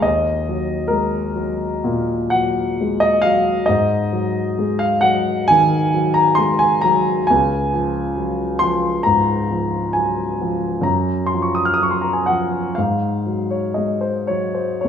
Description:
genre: classical, romantic nocturne for solo piano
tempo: 55-71 BPM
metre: 4/4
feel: rubato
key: unclear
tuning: A4 = 440 Hz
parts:
  - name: dark concert grand piano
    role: solo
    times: 0.0-14.9 s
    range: Db2 to F6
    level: -16 LUFS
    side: left 1 dB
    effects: none
room: moderate recital hall reverb, RT60 1.4 s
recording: small room ambience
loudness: -16 LUFS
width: side -8 dB against mid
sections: 0.0-14.9 A section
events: none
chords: 0.0 Ebm; 3.7 Ab5; 7.3 Db; 10.9 Gbmaj9#11; 12.8 Ab7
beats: | 0.05 0.90 1.84 2.80 | 3.69 4.58 5.50 6.40 | 7.30 8.17 9.05 9.95 | 10.86 11.78 12.76 13.76 | 14.82

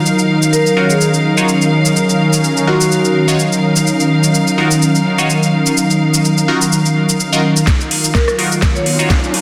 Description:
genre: bass house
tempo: 126 BPM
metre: 4/4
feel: swing 54% on 16ths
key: Eb minor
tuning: A4 = 441 Hz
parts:
  - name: sweeping resonant pad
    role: sustained chords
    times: 0.0-9.4 s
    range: Eb3 to F4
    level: -17 LUFS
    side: equal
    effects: chorus, sidechain pumping
  - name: dark studio string section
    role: texture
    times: 0.0-9.4 s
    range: Eb4 to F5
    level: -21 LUFS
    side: equal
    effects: sidechain pumping
  - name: garage drum kit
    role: drums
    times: 0.1-9.4 s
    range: hi-hat, rim click, shaker, snare drum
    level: -21 LUFS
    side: equal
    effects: none
  - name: vibraphone with medium hard mallets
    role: melody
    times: 0.5-3.3, 8.1-8.9 s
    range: Gb4 to Db5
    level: -22 LUFS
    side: equal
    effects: dub echo
  - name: band-passed chord stab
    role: stabs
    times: 0.8-9.1 s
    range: Eb4 to Db5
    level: -23 LUFS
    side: equal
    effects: phaser, sidechain pumping, dub echo
  - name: electronic kick drum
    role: drums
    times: 7.7-9.2 s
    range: none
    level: -16 LUFS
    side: equal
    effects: none
  - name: riser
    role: sound effects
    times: 8.5-9.4 s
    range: none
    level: -29 LUFS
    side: equal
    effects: none
room: moderate digital room reverb, RT60 1.1 s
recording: dense, heavily limited modern master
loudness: -13 LUFS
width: mono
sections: 0.0-7.7 A section; 7.7-9.4 B section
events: build-up 7.7-9.4; drum fill 7.7-9.4; riser 8.5-9.4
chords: 0.0 Ebmadd9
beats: | 0.05 0.53 1.01 1.48 | 1.96 2.44 2.91 3.39 | 3.86 4.34 4.82 5.29 | 5.77 6.25 6.72 7.20 | 7.67 8.15 8.63 9.10

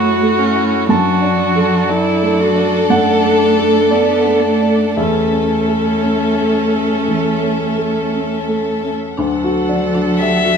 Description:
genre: neoclassical piano and strings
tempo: 58 BPM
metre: 4/4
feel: rubato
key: D major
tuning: A4 = 440 Hz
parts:
  - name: dark violin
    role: melody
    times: 0.0-10.6 s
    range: F#4 to E5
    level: -17 LUFS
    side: left 4 dB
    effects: none
  - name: rich cello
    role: second line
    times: 0.0-10.6 s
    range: F#3 to B3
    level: -19 LUFS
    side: right 2 dB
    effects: none
  - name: rich viola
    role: accompaniment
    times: 0.0-10.6 s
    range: C#4 to A4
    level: -22 LUFS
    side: right 2 dB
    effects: none
  - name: warm upright piano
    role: accompaniment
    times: 0.0-10.6 s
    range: D2 to A5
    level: -18 LUFS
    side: right 2 dB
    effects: none
  - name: clear symphonic string section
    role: sustained chords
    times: 0.0-10.6 s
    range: C#4 to F#5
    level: -25 LUFS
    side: right 2 dB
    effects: none
  - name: marimba with hard mallets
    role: arpeggios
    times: 9.2-10.6 s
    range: D4 to D5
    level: -22 LUFS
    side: left 4 dB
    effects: none
room: moderate stone room reverb, RT60 1.3 s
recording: band playing live in one room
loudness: -13 LUFS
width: side -6 dB against mid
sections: 0.0-9.2 A section; 9.2-10.6 B section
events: none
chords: 0.0 F#m7; 0.9 D/F#; 5.0 A/E; 9.2 D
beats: | 0.90 1.90 2.90 3.92 | 4.97 6.03 7.08 8.13 | 9.18 10.20

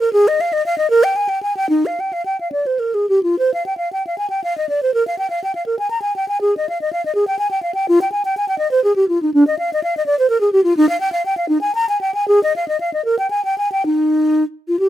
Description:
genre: classical, baroque-style fantasia for unaccompanied flute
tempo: 64-86 BPM (dotted quarters)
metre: 6/8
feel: rubato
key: Eb major, C minor from 3.4 s, Eb major from 9.3 s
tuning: A4 = 435 Hz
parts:
  - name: mellow hollow concert flute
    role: solo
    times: 0.0-14.9 s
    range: D4 to Bb5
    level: -15 LUFS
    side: equal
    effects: none
room: little or no reverb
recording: close, detailed microphones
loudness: -15 LUFS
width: side -12 dB against mid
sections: 0.0-3.4 A section; 3.4-14.9 A section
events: none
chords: none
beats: | 0.13 0.90 | 1.70 2.53 | 3.41 4.18 | 4.93 5.67 | 6.43 7.16 | 7.87 8.58 | 9.34 10.06 | 10.78 11.51 | 12.30 13.08 | 13.89 14.71

